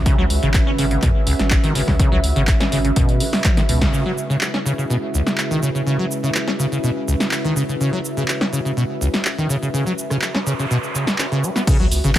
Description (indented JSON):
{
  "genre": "acid house",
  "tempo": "124 BPM",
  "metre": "4/4",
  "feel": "straight",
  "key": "C# minor",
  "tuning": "A4 = 440 Hz",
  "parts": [
    { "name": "warbly tape-like pad", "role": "sustained chords", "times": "0.0-11.6 s", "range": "C#3 to E4", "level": "-27 LUFS", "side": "right 2 dB", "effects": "chorus, built-in reverb, sidechain pumping" },
    { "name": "saturated sub bass", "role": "bass", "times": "0.0-3.9, 11.8-12.2 s", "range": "G#1 to F#2", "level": "-21 LUFS", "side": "equal", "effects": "sidechain pumping" },
    { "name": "warbly tape-like pad", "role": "texture", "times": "0.0-12.2 s", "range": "C#4 to E5", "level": "-28 LUFS", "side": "equal", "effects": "chorus, built-in reverb, sidechain pumping" },
    { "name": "acid bass, saw", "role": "riff", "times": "0.1-12.1 s", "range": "C#2 to C#4", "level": "-21 LUFS", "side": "equal", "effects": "tube saturation, lush chorus, sidechain pumping, tape echo" },
    { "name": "electronic kick drum", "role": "drums", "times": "0.1-3.9, 11.7-12.2 s", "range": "none", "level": "-18 LUFS", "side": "equal", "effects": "overdrive" },
    { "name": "punchy analog drum machine", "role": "drums", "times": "0.1-12.2 s", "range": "crash cymbal, handclaps, hi-hat, rim click, shaker, snare drum, toms", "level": "-23 LUFS", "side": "equal", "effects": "overdrive" },
    { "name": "noise sweep", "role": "sound effects", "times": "10.0-11.7 s", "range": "none", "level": "-30 LUFS", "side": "right 2 dB", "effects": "none" }
  ],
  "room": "light reverb",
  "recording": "none",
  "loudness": "-16 LUFS",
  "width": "side -13 dB against mid",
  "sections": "0.0-3.9 A section; 3.9-11.7 B section",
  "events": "drum fill 3.4-3.9; band accent 3.8; noise sweep 10.0-11.7",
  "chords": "0.0 C#m"
}